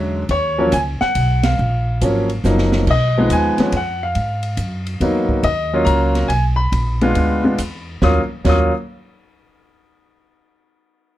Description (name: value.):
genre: jazz piano trio.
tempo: 140 BPM.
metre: 3/4.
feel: swing 66% on 8ths.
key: Eb minor.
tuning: A4 = 442 Hz.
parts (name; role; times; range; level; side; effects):
clear baby grand piano; melody; 0.0-8.7 s; D3 to Eb6; -17 LUFS; left 1 dB; none.
upright bass; bass; 0.0-8.7 s; Gb1 to Ab2; -19 LUFS; equal; none.
open jazz drum kit; drums; 0.3-8.6 s; crash cymbal, hi-hat, kick drum, ride cymbal, snare drum; -27 LUFS; right 2 dB; none.
room: little or no reverb.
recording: close, detailed microphones.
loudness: -15 LUFS.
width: side -14 dB against mid.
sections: 0.0-2.9 A section; 2.9-8.0 B section; 8.0-9.3 C section.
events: band accent 1.4; drum fill 2.4-2.9.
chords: 0.3 Ebm9; 2.9 Fm7b5; 4.2 Abm7; 5.4 Ebm7; 6.7 Bb7b9; 8.0 Ebm7.